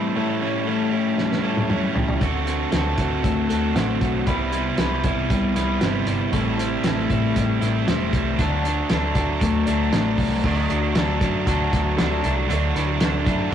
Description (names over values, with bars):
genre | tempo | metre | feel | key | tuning
jangly indie pop | 117 BPM | 4/4 | straight | unclear | A4 = 440 Hz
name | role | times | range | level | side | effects
biting overdriven guitar | accompaniment | 0.0-13.5 s | A2 to F#4 | -24 LUFS | right 4 dB | none
twelve-string electric guitar | arpeggios | 0.0-13.5 s | A2 to B4 | -24 LUFS | left 4 dB | spring reverb
cloth-damped thuddy drum kit | drums | 1.2-13.4 s | crash cymbal, hi-hat, kick drum, snare drum, toms | -24 LUFS | equal | none
vintage muted picked electric bass | bass | 2.2-13.5 s | E1 to F#2 | -26 LUFS | equal | none
room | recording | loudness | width
moderate small room reverb, RT60 0.5 s | rough rehearsal-room recording, warm saturation | -19 LUFS | side -9 dB against mid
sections
0.0-10.4 A section; 10.4-13.5 B section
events
drum fill 1.2-2.2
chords
0.2 A7; 2.2 D7; 4.3 Cmaj7; 6.3 Am7; 8.4 D